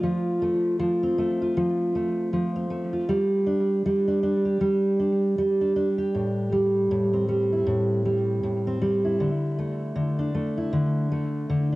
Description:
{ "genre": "pop", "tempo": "78 BPM", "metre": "4/4", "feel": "swing 60% on 16ths", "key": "D minor", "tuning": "A4 = 439 Hz", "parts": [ { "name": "fingerpicked steel-string acoustic guitar", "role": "solo", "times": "0.0-11.8 s", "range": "A2 to A4", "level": "-22 LUFS", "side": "equal", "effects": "tape echo" } ], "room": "moderate spring reverb, RT60 1.8 s, small room ambience", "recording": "home recording on cassette", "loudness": "-22 LUFS", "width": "side -19 dB against mid", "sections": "0.0-11.8 A section", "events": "none", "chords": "0.0 F; 3.1 G5; 6.1 Am7" }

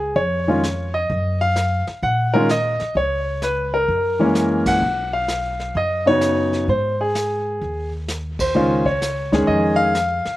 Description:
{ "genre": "jazz piano trio", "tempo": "129 BPM", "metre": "4/4", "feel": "swing 66% on 8ths", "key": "Db major", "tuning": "A4 = 439 Hz", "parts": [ { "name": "clear concert grand piano", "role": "melody", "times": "0.0-10.4 s", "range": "Db3 to Gb5", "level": "-18 LUFS", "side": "equal", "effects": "slapback echo" }, { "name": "upright bass", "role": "bass", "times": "0.0-10.3 s", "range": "Cb2 to Bb2", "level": "-25 LUFS", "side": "equal", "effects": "none" }, { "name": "vintage brush drum kit", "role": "drums", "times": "0.2-10.4 s", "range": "brushed snare drum, hi-hat, kick drum, ride cymbal, snare drum", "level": "-31 LUFS", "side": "equal", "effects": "none" } ], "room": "little or no reverb", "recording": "recorded outdoors, with no room sound", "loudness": "-17 LUFS", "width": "side -16 dB against mid", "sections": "0.0-10.4 A section", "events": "band accent 4.6, 8.3", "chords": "0.0 Db; 1.1 Gb6; 3.0 N.C.; 3.9 Gb7; 4.8 Cb; 6.7 Ab5; 8.6 Dbadd9" }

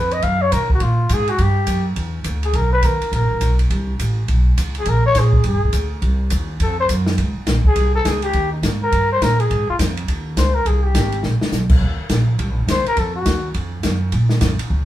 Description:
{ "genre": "jazz, small-group swing and bop", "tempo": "207 BPM", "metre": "4/4", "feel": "swing 62% on 8ths", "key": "Bb minor", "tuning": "A4 = 439 Hz", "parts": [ { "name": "growling trumpet", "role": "melody", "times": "0.0-13.5 s", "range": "Eb4 to F5", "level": "-20 LUFS", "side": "left 2 dB", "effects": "none" }, { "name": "upright bass", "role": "bass", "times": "0.0-14.8 s", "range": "D#1 to Cb3", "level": "-18 LUFS", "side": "equal", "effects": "none" }, { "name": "open jazz drum kit", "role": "drums", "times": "0.1-14.8 s", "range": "crash cymbal, hi-hat, kick drum, ride cymbal, snare drum", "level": "-22 LUFS", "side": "equal", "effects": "none" } ], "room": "moderate studio reverb, RT60 0.6 s", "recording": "band playing live in one room", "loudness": "-16 LUFS", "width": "side -13 dB against mid", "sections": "0.0-7.2 A section; 7.2-14.8 B section", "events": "trumpet solo 7.2-14.8; drum fill 11.2", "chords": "0.2 Gbmaj7; 1.4 Dadd11; 2.6 Bmaj7; 3.7 Am; 4.3 Bsus2; 4.9 Bbm7; 5.4 G5; 6.0 Cm; 6.6 F; 7.2 Bbm9; 8.3 Eb; 9.5 Ab5; 10.7 Abmaj7; 11.2 N.C.; 11.8 Eb7(no3); 13.0 Ebmadd9; 14.1 Bbm" }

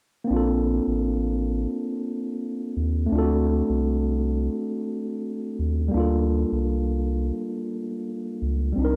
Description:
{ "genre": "hip hop", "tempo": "85 BPM", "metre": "4/4", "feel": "swing 63% on 16ths", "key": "Bb major", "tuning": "A4 = 440 Hz", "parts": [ { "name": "mellow tine electric piano", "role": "accompaniment", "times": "0.2-9.0 s", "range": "G3 to Bb4", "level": "-27 LUFS", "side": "equal", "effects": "none" }, { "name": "round analog bass", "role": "bass", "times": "0.3-9.0 s", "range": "A1 to Eb2", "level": "-27 LUFS", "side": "equal", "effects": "none" } ], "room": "light reverb", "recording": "dark, warm production", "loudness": "-25 LUFS", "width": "mono", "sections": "0.3-9.0 A section", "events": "none", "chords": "0.3 Bbmaj9; 3.1 D7; 5.9 Gm9" }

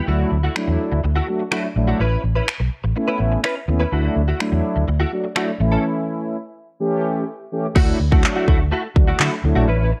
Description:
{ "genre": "dance-pop", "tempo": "125 BPM", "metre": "4/4", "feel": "straight", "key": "D major", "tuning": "A4 = 441 Hz", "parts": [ { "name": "direct-recorded clean electric guitar", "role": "riff", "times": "0.0-10.0 s", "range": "A3 to B4", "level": "-27 LUFS", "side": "equal", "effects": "ensemble chorus" }, { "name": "mellow synth brass", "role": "accompaniment", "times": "0.1-9.7 s", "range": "E3 to G4", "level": "-25 LUFS", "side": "equal", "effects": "chorus, sidechain pumping" }, { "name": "vintage muted fingered electric bass", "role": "bass", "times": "0.1-9.9 s", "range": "A1 to D3", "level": "-22 LUFS", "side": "equal", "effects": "sidechain pumping" }, { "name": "pop drum kit", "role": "drums", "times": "0.6-9.3 s", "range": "crash cymbal, finger snaps, handclaps, kick drum", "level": "-21 LUFS", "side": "equal", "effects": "none" } ], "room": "light reverb, digital ambience", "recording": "worn, warbling old tape, cassette tape, warbly pitch drift", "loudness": "-20 LUFS", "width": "mono", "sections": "0.0-7.8 A section; 7.8-10.0 B section", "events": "break 5.8-7.8", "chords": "0.1 Dadd9; 2.0 Aadd9; 3.9 Dadd9; 5.6 A; 7.8 Dadd9" }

